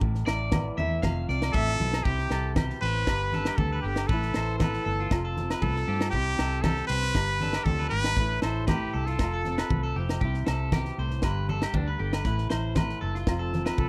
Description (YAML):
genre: highlife guitar band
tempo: 118 BPM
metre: 4/4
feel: straight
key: C major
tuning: A4 = 438 Hz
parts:
  - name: flamenco guitar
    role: accompaniment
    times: 0.0-13.9 s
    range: F2 to G4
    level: -38 LUFS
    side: equal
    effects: none
  - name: vintage muted fingered electric bass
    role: bass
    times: 0.0-13.9 s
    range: F1 to G2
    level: -32 LUFS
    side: equal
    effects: none
  - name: tight funk drum kit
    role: drums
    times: 0.0-13.9 s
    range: kick drum, snare drum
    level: -31 LUFS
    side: equal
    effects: none
  - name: congas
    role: percussion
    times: 0.0-13.9 s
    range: none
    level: -34 LUFS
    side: equal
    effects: none
  - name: electric guitar at the edge of break-up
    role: arpeggios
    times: 0.3-13.9 s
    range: D4 to F5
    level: -37 LUFS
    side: equal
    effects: spring reverb, slapback echo
  - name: agogo bells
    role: percussion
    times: 0.3-13.8 s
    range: none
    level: -42 LUFS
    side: equal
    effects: none
  - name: trumpet with straight mute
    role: melody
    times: 1.5-10.0, 13.8-13.9 s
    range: G4 to B4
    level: -33 LUFS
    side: equal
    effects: none
room: little or no reverb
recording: dry, close 1970s-style studio recording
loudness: -27 LUFS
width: mono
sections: 0.0-2.1 A section; 2.1-13.9 B section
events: clean electric guitar solo 0.0-2.1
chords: 0.0 Asus2; 1.0 F; 2.1 C; 3.1 G; 4.1 Asus2; 5.1 F; 6.1 C; 7.2 G; 8.2 Asus2; 9.2 F; 10.2 C; 11.2 G; 12.3 Asus2; 13.3 F